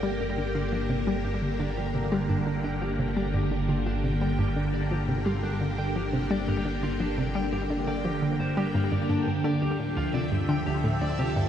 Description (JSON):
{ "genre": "ambient, sequencer-driven space music", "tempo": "86 BPM", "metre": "4/4", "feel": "straight", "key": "G dorian", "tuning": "A4 = 440 Hz", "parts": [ { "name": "phased string machine", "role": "sustained chords", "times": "0.0-11.5 s", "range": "D3 to E5", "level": "-29 LUFS", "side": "equal", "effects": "ensemble chorus, phaser" }, { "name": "electric guitar at the edge of break-up", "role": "arpeggios", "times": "0.0-11.3 s", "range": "D4 to G5", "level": "-37 LUFS", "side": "left 1 dB", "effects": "auto-pan, ping-pong delay" }, { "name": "analog pluck", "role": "riff", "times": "0.0-11.5 s", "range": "D2 to G3", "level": "-29 LUFS", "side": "left 1 dB", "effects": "chorus, ping-pong delay" }, { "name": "fat analog bass", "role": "bass", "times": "0.0-11.5 s", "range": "G1 to D2", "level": "-33 LUFS", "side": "equal", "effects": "none" }, { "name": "bubbling stepped-filter texture", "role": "texture", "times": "0.1-11.5 s", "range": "G5", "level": "-42 LUFS", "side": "right 2 dB", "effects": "chorus, built-in reverb" } ], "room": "wet cathedral reverb, RT60 6.8 s", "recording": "in a vast, echoing space", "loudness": "-25 LUFS", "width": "side -9 dB against mid", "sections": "0.0-11.5 A section", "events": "fade-in on clean electric guitar 0.0-11.5; fade-in on synth texture 0.0-11.5", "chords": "0.0 Gm; 9.3 Dmadd9" }